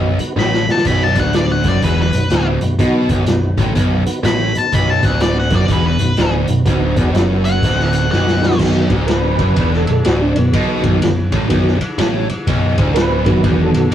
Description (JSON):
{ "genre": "blues rock power trio and southern rock", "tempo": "124 BPM", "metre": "4/4", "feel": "swing 63% on 8ths", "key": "unclear", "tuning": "A4 = 440 Hz", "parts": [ { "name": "mellow tonewheel organ", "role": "sustained chords", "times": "0.0-13.9 s", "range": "D#3 to B4", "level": "-20 LUFS", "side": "right 1 dB", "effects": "slow rotary speaker, chorus vibrato" }, { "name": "distorted electric guitar", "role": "riff", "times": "0.0-13.9 s", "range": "B1 to B2", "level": "-18 LUFS", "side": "equal", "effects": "overdrive" }, { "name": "modern bright picked electric bass", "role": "bass", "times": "0.0-13.9 s", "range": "B0 to B1", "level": "-18 LUFS", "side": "equal", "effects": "none" }, { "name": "vintage drum kit", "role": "drums", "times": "0.2-13.9 s", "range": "crash cymbal, hi-hat, kick drum, ride cymbal, snare drum", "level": "-19 LUFS", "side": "equal", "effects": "none" }, { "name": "octave-fuzz lead guitar", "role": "melody", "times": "0.4-8.6 s", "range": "B4 to B5", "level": "-19 LUFS", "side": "left 3 dB", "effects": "distortion" } ], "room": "wet booth ambience, RT60 0.2 s", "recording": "rough rehearsal-room recording, warm saturation", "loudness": "-13 LUFS", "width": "side -10 dB against mid", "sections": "0.0-8.6 A section; 8.6-13.9 B section", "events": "drum fill 0.4-0.9, 8.1-8.6; tonewheel organ solo 8.6-13.9", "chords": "0.0 B" }